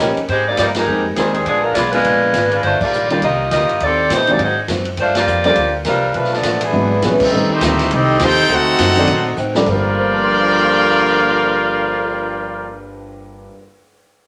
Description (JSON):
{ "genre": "jazz, big band swing", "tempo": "205 BPM", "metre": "4/4", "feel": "swing 60% on 8ths", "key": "G minor", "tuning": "A4 = 440 Hz", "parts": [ { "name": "mellow saxophone section", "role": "melody", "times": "0.0-7.2 s", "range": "Eb3 to Eb5", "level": "-18 LUFS", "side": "equal", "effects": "none" }, { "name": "picked old ladder-braced acoustic guitar", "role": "accompaniment", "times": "0.0-13.6 s", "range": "G2 to G#4", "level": "-28 LUFS", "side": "equal", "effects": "none" }, { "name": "warm baby grand piano", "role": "accompaniment", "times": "0.0-13.8 s", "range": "G2 to C7", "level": "-23 LUFS", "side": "equal", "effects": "none" }, { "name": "upright bass", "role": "bass", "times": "0.0-13.5 s", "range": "G1 to Bb2", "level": "-27 LUFS", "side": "equal", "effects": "none" }, { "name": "swinging big-band drum kit", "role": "drums", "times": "0.2-11.9 s", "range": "crash cymbal, cymbal swell, hi-hat, kick drum, ride cymbal, snare drum", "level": "-27 LUFS", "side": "equal", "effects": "none" }, { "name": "warm trombone section", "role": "second line", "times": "6.6-12.8 s", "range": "G2 to G4", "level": "-24 LUFS", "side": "equal", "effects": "none" }, { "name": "brilliant trumpet section", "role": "melody", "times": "7.2-12.8 s", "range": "G3 to G5", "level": "-17 LUFS", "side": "equal", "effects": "none" } ], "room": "wet studio reverb, RT60 0.8 s", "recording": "none", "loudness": "-16 LUFS", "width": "mono", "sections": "0.0-7.3 A section; 7.3-9.7 B section; 9.7-12.0 C section", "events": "band accent 0.7, 2.8, 5.1, 7.2; drum fill 9.4", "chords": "0.3 Abmaj7; 1.5 Bb7b9; 2.6 Ebmaj9; 3.8 Am7b5; 4.4 Ab7#11; 5.0 Gm7; 6.1 Bm7b5; 6.7 E7; 7.3 Am7b5; 8.5 D7b9; 9.7 Gm7", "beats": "0.00 | 0.29 0.58 0.87 1.17 | 1.46 1.75 2.04 2.34 | 2.63 2.92 3.22 3.51 | 3.80 4.09 4.39 4.68 | 4.97 5.27 5.56 5.85 | 6.15 6.44 6.73 7.03 | 7.32 7.61 7.90 8.20 | 8.49 8.78 9.07 9.37 | 9.66 9.95 10.25 10.54 | 10.83 11.12 11.42 11.71" }